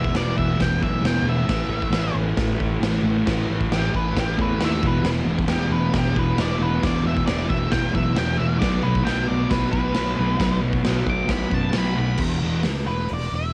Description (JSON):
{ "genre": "garage rock duo or trio", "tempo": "135 BPM", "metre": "4/4", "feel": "straight", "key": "unclear", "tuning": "A4 = 440 Hz", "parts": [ { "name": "octave-fuzz lead guitar", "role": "melody", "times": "0.0-13.5 s", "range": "G4 to D6", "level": "-30 LUFS", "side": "equal", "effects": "distortion, cassette tape" }, { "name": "fuzz guitar", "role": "riff", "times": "0.0-12.6 s", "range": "E2 to B3", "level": "-26 LUFS", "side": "equal", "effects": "distortion, cassette tape" }, { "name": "fretless electric bass", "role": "bass", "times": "0.0-13.5 s", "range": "E1 to F#2", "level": "-28 LUFS", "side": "equal", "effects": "none" }, { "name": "raw garage drum kit", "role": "drums", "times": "0.0-13.2 s", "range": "crash cymbal, hi-hat, kick drum, snare drum", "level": "-27 LUFS", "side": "equal", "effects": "none" } ], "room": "small room ambience", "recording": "home recording on cassette", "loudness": "-22 LUFS", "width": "mono", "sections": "0.0-12.2 A section; 12.2-13.5 B section", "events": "lead electric guitar solo 12.2-13.5", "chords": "0.0 E5; 1.5 A5; 4.8 E5; 8.6 B5; 12.2 E5" }